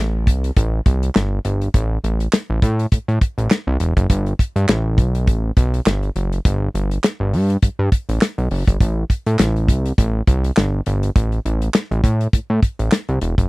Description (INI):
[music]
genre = early-eighties boogie funk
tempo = 102 BPM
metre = 4/4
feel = swing 56% on 16ths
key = A dorian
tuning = A4 = 441 Hz
[part]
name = fat analog bass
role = bass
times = 0.0-13.5 s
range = E1 to A2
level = -18 LUFS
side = equal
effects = none
[part]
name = damped 70s drum kit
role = drums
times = 0.3-13.5 s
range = handclaps, hi-hat, kick drum, snare drum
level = -15 LUFS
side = equal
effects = none
[sound]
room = little or no reverb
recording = dry, close 1970s-style studio recording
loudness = -16 LUFS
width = side -23 dB against mid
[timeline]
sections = 0.0-13.5 A section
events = none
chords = none